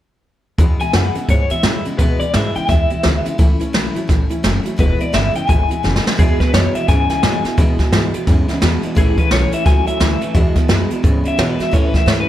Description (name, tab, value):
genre	rockabilly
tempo	173 BPM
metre	4/4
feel	swing 61% on 8ths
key	E major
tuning	A4 = 441 Hz
part	picked steel-string acoustic guitar	accompaniment	0.6-12.3 s	E2 to E4	-23 LUFS	left 3 dB	none
part	electric guitar through a small old amp	riff	0.6-12.3 s	E2 to F#3	-23 LUFS	right 3 dB	none
part	upright bass	bass	0.6-12.3 s	E1 to B2	-19 LUFS	equal	none
part	jazz brush drum kit	drums	0.6-12.2 s	hi-hat, kick drum, snare drum	-16 LUFS	equal	none
part	electric guitar through a small old amp	melody	0.8-12.3 s	G#4 to G#5	-21 LUFS	left 2 dB	tremolo, tape echo
room	light reverb, studio reverb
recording	none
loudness	-13 LUFS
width	side -12 dB against mid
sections	0.6-6.2 A section; 6.2-12.3 B section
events	drum fill 5.8-6.2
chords	0.6 E; 3.4 A; 4.8 E; 9.0 A; 10.4 E; 11.7 A